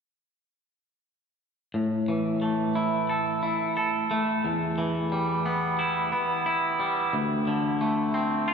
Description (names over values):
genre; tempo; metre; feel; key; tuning
rock; 89 BPM; 4/4; straight; unclear; A4 = 439 Hz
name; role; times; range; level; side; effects
twangy electric guitar; arpeggios; 1.7-8.5 s; D2 to A4; -24 LUFS; equal; none
room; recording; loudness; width
wet cathedral reverb, RT60 5.2 s; recorded in a church or concert hall; -24 LUFS; side -6 dB against mid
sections
1.7-8.5 A section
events
none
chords
1.7 A5; 4.4 Em; 7.1 D7(no3)